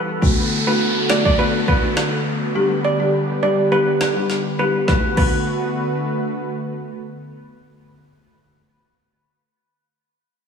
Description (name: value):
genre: dancehall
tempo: 103 BPM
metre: 4/4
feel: straight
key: B minor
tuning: A4 = 440 Hz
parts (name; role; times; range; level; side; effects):
- steel pan; melody; 0.0-6.6 s; B4 to D5; -23 LUFS; right 3 dB; diffuse ambient delay
- warm analog pad; sustained chords; 0.0-8.0 s; D3 to F#5; -23 LUFS; equal; chorus, sidechain pumping
- folk marimba with medium mallets; accompaniment; 0.2-8.7 s; G3 to G4; -22 LUFS; left 2 dB; sidechain pumping
- afro-pop drum kit; drums; 0.2-5.3 s; crash cymbal, kick drum, rim click, snare drum; -20 LUFS; equal; none
- downlifter; sound effects; 0.2-4.9 s; none; -26 LUFS; right 1 dB; none
room: wet lush hall reverb, RT60 1.9 s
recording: dreamy mix soaked in reverb, small room ambience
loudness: -16 LUFS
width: side -6 dB against mid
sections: 0.2-4.9 A section; 4.9-7.2 B section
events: break 0.0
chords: 0.2 Bm7; 2.6 G; 4.9 Bm7